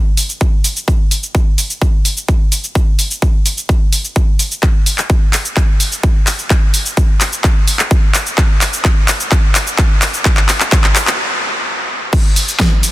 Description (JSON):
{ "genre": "EDM", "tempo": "128 BPM", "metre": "4/4", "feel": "straight", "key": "none", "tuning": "none", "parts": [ { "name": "big-room dance drum kit", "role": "drums", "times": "0.2-12.9 s", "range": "cabasa, crash cymbal, handclaps, hi-hat, snare drum", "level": "-15 LUFS", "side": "equal", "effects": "overdrive, small room ambience" }, { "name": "electronic kick drum", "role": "drums", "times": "0.4-12.7 s", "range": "none", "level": "-12 LUFS", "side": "equal", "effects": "overdrive, small room ambience" } ], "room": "light reverb", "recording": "dense, heavily limited modern master", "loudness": "-11 LUFS", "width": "side -16 dB against mid", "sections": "0.0-12.1 A section", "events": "build-up 0.0-12.1; drum fill 4.6-11.2; stop 11.2-12.1", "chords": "none" }